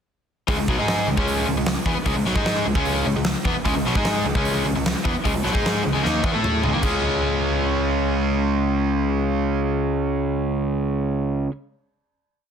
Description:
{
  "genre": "hard rock",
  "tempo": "151 BPM",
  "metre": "4/4",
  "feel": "straight",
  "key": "C# minor",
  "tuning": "A4 = 440 Hz",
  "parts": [
    { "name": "distorted electric guitar", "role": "riff", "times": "0.5-11.5 s", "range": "B2 to A4", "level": "-24 LUFS", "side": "right 9 dB", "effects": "overdrive" },
    { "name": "overdriven semi-hollow guitar", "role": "riff", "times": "0.5-11.5 s", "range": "B2 to A4", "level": "-24 LUFS", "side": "left 11 dB", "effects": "none" },
    { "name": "fuzz picked electric bass", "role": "bass", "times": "0.5-11.5 s", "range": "B1 to A2", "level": "-26 LUFS", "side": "equal", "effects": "overdrive" },
    { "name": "huge arena drum kit", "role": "drums", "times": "0.5-6.9 s", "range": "crash cymbal, hi-hat, kick drum, snare drum, toms", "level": "-25 LUFS", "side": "equal", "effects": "none" }
  ],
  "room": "light reverb",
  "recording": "dense, heavily limited modern master",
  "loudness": "-19 LUFS",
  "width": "side -7 dB against mid",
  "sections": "0.5-6.8 riff; 6.8-10.0 final chord",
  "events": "drum fill 6.0-6.8",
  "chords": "0.5 C#m; 6.8 C#5"
}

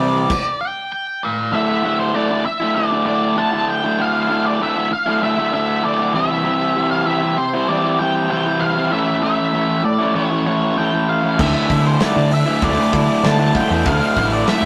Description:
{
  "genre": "indie rock",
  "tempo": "97 BPM",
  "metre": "4/4",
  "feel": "straight",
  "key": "D minor",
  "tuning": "A4 = 438 Hz",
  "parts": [
    { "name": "octave-fuzz lead guitar", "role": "melody", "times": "0.0-14.7 s", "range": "C5 to A5", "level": "-22 LUFS", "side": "equal", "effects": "distortion" },
    { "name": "crunchy overdriven guitar", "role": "riff", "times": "0.0-14.7 s", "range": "A2 to E4", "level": "-20 LUFS", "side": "equal", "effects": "none" },
    { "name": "overdriven electric guitar", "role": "riff", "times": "0.0-0.3, 11.4-14.7 s", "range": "C3 to E4", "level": "-25 LUFS", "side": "equal", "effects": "none" },
    { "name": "growling picked electric bass", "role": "bass", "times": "0.0-0.2, 11.4-14.7 s", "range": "A1 to D3", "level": "-22 LUFS", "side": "equal", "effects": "overdrive" },
    { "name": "loose indie drum kit", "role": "drums", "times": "0.3-0.4, 11.4-14.6 s", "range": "crash cymbal, hi-hat, kick drum, snare drum", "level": "-25 LUFS", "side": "equal", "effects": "none" }
  ],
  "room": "moderate stone room reverb, RT60 1.3 s",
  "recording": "rough rehearsal-room recording, tube saturation",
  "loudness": "-18 LUFS",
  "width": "mono",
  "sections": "0.0-1.5 A section; 1.5-14.7 B section",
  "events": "lead electric guitar solo 0.0-1.5; stop 0.3-1.5",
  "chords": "0.0 C; 1.5 Dsus2; 6.2 C; 8.9 A; 11.4 Dsus2"
}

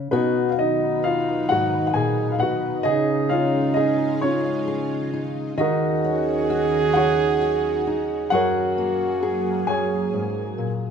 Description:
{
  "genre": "acoustic folk-pop ballad",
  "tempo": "44 BPM (dotted quarters)",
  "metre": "6/8",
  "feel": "straight",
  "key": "unclear",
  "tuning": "A4 = 441 Hz",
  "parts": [
    { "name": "fingerpicked steel-string acoustic guitar", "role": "accompaniment", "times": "0.0-10.9 s", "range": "F#2 to G#4", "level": "-25 LUFS", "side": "left 4 dB", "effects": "none" },
    { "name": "dark baby grand piano", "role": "melody", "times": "0.1-10.7 s", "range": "B3 to G#5", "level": "-23 LUFS", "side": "right 1 dB", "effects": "none" },
    { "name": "warm French horn", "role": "second line", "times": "0.1-10.6 s", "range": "D#4 to G#4", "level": "-26 LUFS", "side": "right 4 dB", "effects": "none" },
    { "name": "analog string pad", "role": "sustained chords", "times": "0.5-10.9 s", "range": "D#2 to B4", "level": "-30 LUFS", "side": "right 1 dB", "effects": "ensemble chorus" }
  ],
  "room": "moderate scoring stage reverb, RT60 1.4 s",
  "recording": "minimal, uncompressed stereo recording",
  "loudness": "-19 LUFS",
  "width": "side -7 dB against mid",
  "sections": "0.1-10.9 A section",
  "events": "none",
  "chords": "0.1 B; 2.9 C#add9; 5.6 D#m7; 8.3 F#add9"
}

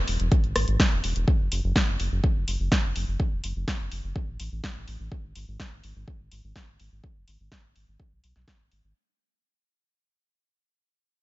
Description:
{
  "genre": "progressive house",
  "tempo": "125 BPM",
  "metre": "4/4",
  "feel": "straight",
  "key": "F# minor",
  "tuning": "A4 = 439 Hz",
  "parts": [
    { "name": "round analog bass", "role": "bass", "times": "0.0-8.9 s", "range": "E1 to B1", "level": "-29 LUFS", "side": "equal", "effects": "sidechain pumping" },
    { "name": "deep house drum kit", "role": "drums", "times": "0.1-8.8 s", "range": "hi-hat, rim click, snare drum", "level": "-29 LUFS", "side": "equal", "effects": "sidechain pumping on hats" },
    { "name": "electronic kick drum", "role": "drums", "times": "0.3-8.6 s", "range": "none", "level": "-24 LUFS", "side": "equal", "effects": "none" }
  ],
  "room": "little or no reverb",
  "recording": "nothing above 7.7 kHz",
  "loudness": "-24 LUFS",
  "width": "side -18 dB against mid",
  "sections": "0.0-9.0 A section",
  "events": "fade-out 0.0-9.0",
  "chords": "none"
}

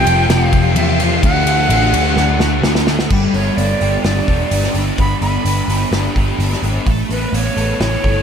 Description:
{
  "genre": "rock, shoegaze and dream pop",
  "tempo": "128 BPM",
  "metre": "4/4",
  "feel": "straight",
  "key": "G lydian from 3.1 s",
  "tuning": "A4 = 440 Hz",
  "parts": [
    { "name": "breathy bright jazz flute", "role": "melody", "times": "0.0-8.2 s", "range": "B4 to B5", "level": "-20 LUFS", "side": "right 2 dB", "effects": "ping-pong delay" },
    { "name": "fuzz guitar", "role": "riff", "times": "0.0-8.2 s", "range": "F2 to A4", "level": "-18 LUFS", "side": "left 1 dB", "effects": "distortion, ensemble chorus" },
    { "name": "vintage muted picked electric bass", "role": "bass", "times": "0.0-8.2 s", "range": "E1 to E2", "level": "-18 LUFS", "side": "equal", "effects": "none" },
    { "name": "loose indie drum kit", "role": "drums", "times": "0.1-8.2 s", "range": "crash cymbal, hi-hat, kick drum, ride cymbal, snare drum", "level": "-19 LUFS", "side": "equal", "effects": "none" }
  ],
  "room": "moderate cathedral reverb, RT60 5.2 s",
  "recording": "dreamy mix soaked in reverb",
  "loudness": "-13 LUFS",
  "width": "side -7 dB against mid",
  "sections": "0.0-3.1 A section; 3.1-8.2 A section",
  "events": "drum fill 2.2-3.1",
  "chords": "0.0 F5; 1.2 D; 3.1 G; 6.9 Aadd9"
}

